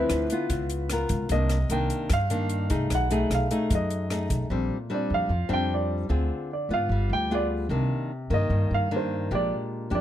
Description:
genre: bossa nova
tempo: 150 BPM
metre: 4/4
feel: straight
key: Bb major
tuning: A4 = 439 Hz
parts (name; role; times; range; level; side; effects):
- warm baby grand piano; melody; 0.0-10.0 s; Cb5 to G5; -29 LUFS; right 1 dB; none
- nylon-string guitar; accompaniment; 0.0-10.0 s; F#2 to Bb4; -28 LUFS; left 2 dB; none
- upright bass; bass; 0.0-10.0 s; G1 to Ab2; -27 LUFS; equal; none
- compact cocktail drum kit; drums; 0.1-4.4 s; hi-hat, kick drum, rim click; -31 LUFS; equal; none
room: light reverb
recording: close, detailed microphones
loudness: -24 LUFS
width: side -11 dB against mid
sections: 0.0-4.5 A section; 4.5-10.0 B section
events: grand piano solo 4.5-10.0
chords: 0.0 Dm9; 0.5 Db6; 1.3 Cm9; 2.9 B6; 4.5 Bb69; 6.1 Dm7b5; 6.9 G7b9; 7.7 Cm9; 9.3 Bb6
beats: 0.11 0.51 0.91 | 1.31 1.71 2.11 2.51 | 2.91 3.31 3.71 4.11 | 4.51 4.91 5.31 5.71 | 6.11 6.51 6.91 7.31 | 7.71 8.11 8.51 8.91 | 9.31 9.72

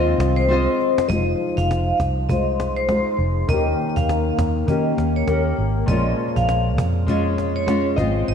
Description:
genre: indie pop, bedroom pop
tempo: 100 BPM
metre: 4/4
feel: swing 60% on 16ths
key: unclear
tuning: A4 = 440 Hz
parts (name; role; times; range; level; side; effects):
- vibraphone with hard mallets; second line; 0.0-8.3 s; C5 to F5; -25 LUFS; right 2 dB; wide subtle chorus, ping-pong delay
- nylon-string guitar; accompaniment; 0.0-8.3 s; Bb2 to Eb5; -21 LUFS; left 3 dB; lush chorus, vibrato effect, low-pass filter
- string machine, cellos; sustained chords; 0.0-1.1 s; Eb3 to F4; -33 LUFS; left 2 dB; none
- vintage muted fingered electric bass; bass; 0.0-8.3 s; F1 to Eb3; -22 LUFS; right 1 dB; none
- cajon; drums; 0.1-8.3 s; none; -28 LUFS; right 1 dB; none
room: wet church reverb, RT60 2.8 s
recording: dreamy mix soaked in reverb, cassette tape, faint mains hum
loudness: -18 LUFS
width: side -7 dB against mid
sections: 0.0-1.1 A section; 1.1-8.3 B section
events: drum fill 0.5-1.1; filter sweep on nylon-string guitar 1.1-8.3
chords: 0.0 Ab6; 1.1 Fm7; 3.5 Eb7; 5.9 Bbm7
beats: 0.49 | 1.09 1.69 2.29 2.88 | 3.48 4.08 4.68 5.28 | 5.88 6.48 7.08 7.68 | 8.28

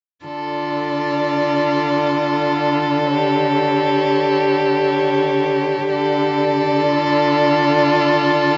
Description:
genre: classical, slow romantic movement for string quartet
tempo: free time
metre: none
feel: none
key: D minor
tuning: A4 = 440 Hz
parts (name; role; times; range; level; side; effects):
- rich violin; melody; 0.3-8.6 s; C#5 to D5; -26 LUFS; equal; none
- rich violin; second line; 0.3-8.6 s; A4; -23 LUFS; equal; none
- clear viola; accompaniment; 0.3-8.6 s; F4 to G4; -23 LUFS; equal; none
- rich cello; bass; 0.3-8.6 s; D3; -22 LUFS; equal; none
room: light reverb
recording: nothing above 7.7 kHz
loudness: -17 LUFS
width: mono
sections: 0.3-8.6 A section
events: none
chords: 0.3 Dm; 3.1 A7/D; 5.9 Dm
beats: free time

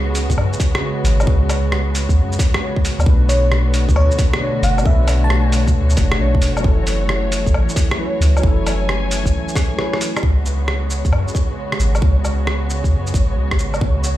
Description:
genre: future garage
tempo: 134 BPM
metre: 4/4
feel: swing 67% on 16ths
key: unclear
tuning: A4 = 440 Hz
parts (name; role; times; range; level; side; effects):
- tine electric piano; accompaniment; 0.0-10.2 s; B2 to C#5; -24 LUFS; left 2 dB; analog chorus, sidechain pumping, dub echo
- muted studio string section; sustained chords; 0.0-14.2 s; C#3 to G#5; -26 LUFS; right 1 dB; sidechain pumping
- soft 808-style bass; bass; 0.0-14.2 s; F#1 to F#2; -17 LUFS; equal; tube saturation, sidechain pumping
- lo-fi sampler-style drum kit; drums; 0.1-14.2 s; hi-hat, rim click, shaker, woodblock; -24 LUFS; equal; none
- electronic kick drum; drums; 0.3-13.9 s; none; -16 LUFS; equal; none
- bell-like FM electric piano; melody; 3.3-5.5 s; C#5 to A5; -25 LUFS; equal; chorus, cassette tape, dub echo
- flickering grainy texture; texture; 10.7-14.2 s; C#5; -31 LUFS; right 2 dB; built-in reverb
room: little or no reverb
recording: played on a big sound system in a bare room, large studio reverb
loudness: -14 LUFS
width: side -14 dB against mid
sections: 0.0-10.2 A section; 10.2-14.2 B section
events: drum fill 9.6-10.2; band accent 10.1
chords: 0.0 C#7sus4; 3.1 Bm7; 6.6 F#m7; 10.2 C#7sus4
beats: 0.38 0.83 | 1.27 1.72 2.17 2.62 | 3.06 3.51 3.96 4.41 | 4.86 5.30 5.75 6.20 | 6.65 7.09 7.54 7.99 | 8.44 8.89 9.33 9.78 | 10.23 10.68 11.12 11.57 | 12.02 12.47 12.92 13.36 | 13.81

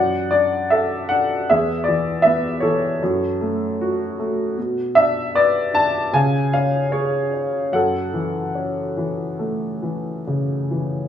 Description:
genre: classical, lyrical solo piano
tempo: 67-79 BPM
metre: 4/4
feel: rubato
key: F# minor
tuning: A4 = 440 Hz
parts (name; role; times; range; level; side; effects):
- warm upright piano; solo; 0.0-11.1 s; E2 to A5; -18 LUFS; left 1 dB; none
room: moderate recital hall reverb, RT60 1.8 s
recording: small room reverb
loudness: -18 LUFS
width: side -9 dB against mid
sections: 0.0-11.1 A section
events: none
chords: 0.0 Dadd9/F#; 1.5 E; 3.0 F#m; 4.6 Bm; 6.1 C#; 7.7 F#m7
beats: 0.70 | 1.48 2.24 3.01 3.79 | 4.57 5.35 6.15 6.95 | 7.74 8.56 9.39 10.26

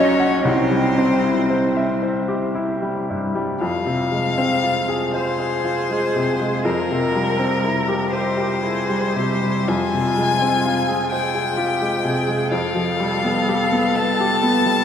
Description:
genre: classical, slow romantic movement for piano trio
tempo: 37-44 BPM (dotted quarters)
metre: 6/8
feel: rubato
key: F minor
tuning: A4 = 440 Hz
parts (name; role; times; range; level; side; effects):
- rich violin; melody; 0.0-14.8 s; Bb4 to A5; -23 LUFS; left 5 dB; none
- rich cello; second line; 0.0-14.8 s; C4 to Bb4; -24 LUFS; right 2 dB; none
- bright baby grand piano; accompaniment; 0.0-14.8 s; Bb1 to Gb5; -20 LUFS; left 1 dB; none
room: wet cathedral reverb, RT60 4.8 s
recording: none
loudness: -18 LUFS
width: side -8 dB against mid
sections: 0.0-3.6 A section; 3.6-14.8 B section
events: none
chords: 0.4 C; 3.6 Fm; 6.7 C7/F; 9.7 Fm; 12.5 G7/F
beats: | 0.45 2.02 | 3.61 5.15 | 6.66 8.12 | 9.69 11.12 | 12.52 13.96

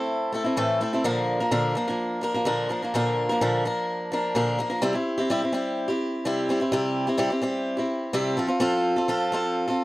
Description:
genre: rock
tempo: 127 BPM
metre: 4/4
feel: straight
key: C mixolydian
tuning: A4 = 442 Hz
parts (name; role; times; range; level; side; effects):
- picked swing-style acoustic guitar; solo; 0.0-9.8 s; A2 to Bb4; -23 LUFS; equal; none
room: light reverb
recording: dry, close 1970s-style studio recording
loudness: -23 LUFS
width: side -18 dB against mid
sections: 0.0-4.8 A section; 4.8-9.8 B section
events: none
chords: 0.0 Am; 1.0 Bb; 4.8 C; 8.4 F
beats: 0.10 0.57 | 1.04 1.52 1.99 2.46 | 2.94 3.41 3.88 4.36 | 4.83 5.30 5.77 6.25 | 6.72 7.19 7.66 8.13 | 8.61 9.08 9.55

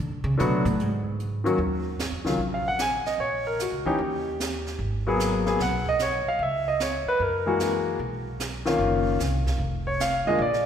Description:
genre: jazz piano trio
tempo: 150 BPM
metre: 4/4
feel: swing 66% on 8ths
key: Eb minor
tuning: A4 = 439 Hz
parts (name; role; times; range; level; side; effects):
- upright bass; bass; 0.0-10.7 s; F1 to D3; -30 LUFS; right 1 dB; none
- warm concert grand piano; melody; 0.4-10.7 s; D3 to Ab5; -24 LUFS; left 1 dB; none
- jazz brush drum kit; drums; 0.4-10.7 s; brushed snare drum, hi-hat, kick drum, snare drum; -35 LUFS; right 3 dB; none
room: wet concert hall reverb, RT60 2.1 s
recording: recorded in a church or concert hall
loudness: -23 LUFS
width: side -8 dB against mid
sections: 0.0-1.6 A section; 1.6-10.7 B section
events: upright bass solo 0.0-1.6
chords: 0.0 Bm7; 0.8 G#7(no3); 1.6 Eb5; 3.2 Bbm; 4.0 Eb; 4.8 Abm9; 6.4 Dbm; 7.2 Gb9; 8.0 Bmaj9#11; 9.6 N.C.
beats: 0.38 0.78 1.18 | 1.58 1.98 2.38 2.78 | 3.19 3.59 3.99 4.39 | 4.79 5.19 5.59 5.99 | 6.39 6.79 7.19 7.59 | 7.99 8.39 8.79 9.19 | 9.59 9.99 10.39

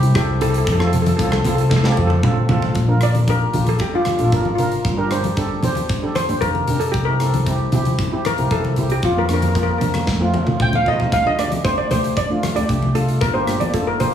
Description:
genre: calypso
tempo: 115 BPM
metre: 4/4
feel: straight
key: Bb major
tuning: A4 = 440 Hz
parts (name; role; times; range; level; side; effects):
- steel pan; melody; 0.0-14.1 s; F4 to G5; -21 LUFS; left 1 dB; plate reverb
- steel pan; accompaniment; 0.0-14.1 s; A3 to C5; -23 LUFS; right 2 dB; none
- upright bass; bass; 0.0-14.1 s; F1 to F2; -21 LUFS; equal; none
- big rock drum kit; drums; 0.0-14.1 s; hi-hat, kick drum, rim click, snare drum, toms; -24 LUFS; equal; none
- congas; percussion; 0.4-14.1 s; none; -24 LUFS; left 1 dB; none
room: moderate studio reverb, RT60 0.6 s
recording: heavily compressed radio sound, multiband compression, studio reverb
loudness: -16 LUFS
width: side -9 dB against mid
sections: 0.0-2.8 A section; 2.8-14.1 B section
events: drum fill 1.7-2.8, 10.1-11.1; steel pan solo 2.8-14.1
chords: 0.0 C7; 0.7 F; 2.8 Bb; 4.8 Gm7; 6.9 C7; 9.0 Fsus4; 10.1 F; 11.1 Dm7; 13.2 Gm7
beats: 0.15 | 0.68 1.20 1.72 2.24 | 2.76 3.28 3.81 4.33 | 4.85 5.37 5.90 6.42 | 6.94 7.46 7.99 8.51 | 9.03 9.55 10.08 10.60 | 11.12 11.64 12.17 12.69 | 13.21 13.74

